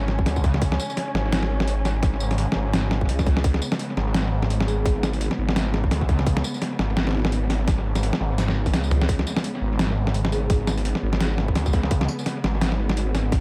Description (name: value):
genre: half-time drum and bass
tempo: 170 BPM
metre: 4/4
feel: swing 57% on 16ths, half-time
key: unclear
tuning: A4 = 442 Hz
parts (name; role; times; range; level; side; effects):
- dark chamber cello section; sustained chords; 0.0-13.4 s; C#3 to C#4; -33 LUFS; equal; sidechain pumping
- phased detuned saw bass; bass; 0.0-13.4 s; G#1 to D2; -26 LUFS; equal; phaser
- boom bap sampler-style drum kit; drums; 0.1-13.4 s; hi-hat, snare drum, tambourine, toms; -28 LUFS; equal; overdrive, dub echo
- electronic kick drum; drums; 0.2-13.4 s; none; -24 LUFS; equal; none
- vibraphone with soft mallets; melody; 4.7-5.0, 10.3-10.7 s; G#4; -38 LUFS; equal; none
room: light reverb, digital ambience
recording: echo-heavy mix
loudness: -23 LUFS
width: mono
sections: 0.0-13.4 A section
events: drum fill 8.4-9.1; kick drops out 8.7-9.1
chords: 0.0 C#5